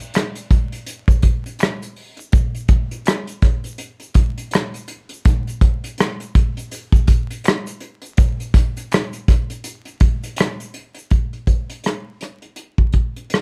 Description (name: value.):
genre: R&B.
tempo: 82 BPM.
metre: 4/4.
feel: swing 59% on 16ths.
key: none.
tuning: none.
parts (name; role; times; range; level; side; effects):
egg shaker and finger snaps; percussion; 0.0-11.1 s; none; -35 LUFS; equal; none.
unplugged drum kit; drums; 0.1-13.4 s; hi-hat, kick drum, rim click; -18 LUFS; equal; none.
room: little or no reverb.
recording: dark, warm production, vinyl crackle.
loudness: -19 LUFS.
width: mono.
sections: 0.0-11.1 A section; 11.1-13.4 B section.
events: none.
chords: none.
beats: 0.14 0.87 1.60 | 2.33 3.06 3.80 4.53 | 5.26 5.99 6.72 7.46 | 8.19 8.92 9.65 10.38 | 11.11 11.85 12.58 13.31.